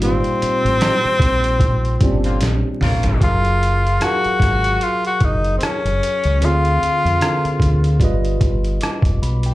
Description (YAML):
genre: R&B, neo-soul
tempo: 75 BPM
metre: 4/4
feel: swing 57% on 16ths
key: unclear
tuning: A4 = 440 Hz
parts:
  - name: breathy tenor saxophone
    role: melody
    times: 0.0-8.0 s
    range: C4 to Gb4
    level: -19 LUFS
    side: left 1 dB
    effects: slapback echo
  - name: tine electric piano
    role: accompaniment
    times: 0.0-9.5 s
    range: Bb2 to D6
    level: -23 LUFS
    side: right 1 dB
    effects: lush chorus
  - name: deep dub fingered electric bass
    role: bass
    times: 0.0-9.5 s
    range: F1 to F2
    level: -19 LUFS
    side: equal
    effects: none
  - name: boom bap sampler-style drum kit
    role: drums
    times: 0.0-9.5 s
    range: hi-hat, kick drum, rim click, snare drum, toms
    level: -20 LUFS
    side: equal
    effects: none
  - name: clear horn section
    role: stabs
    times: 2.2-3.3 s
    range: Db3 to F4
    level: -26 LUFS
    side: left 1 dB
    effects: slapback echo
room: light reverb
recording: live gig heard through the venue's PA, club reverb, vinyl crackle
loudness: -15 LUFS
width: side -17 dB against mid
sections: 0.0-3.2 A section; 3.2-9.5 B section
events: band accent 0.0-3.2; drum fill 2.4-3.2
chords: 0.0 Bb69; 3.2 Gbmaj9; 6.4 Dm7b5; 8.0 G7b13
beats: | 0.01 0.81 1.61 2.41 | 3.21 4.01 4.81 5.61 | 6.41 7.21 8.01 8.81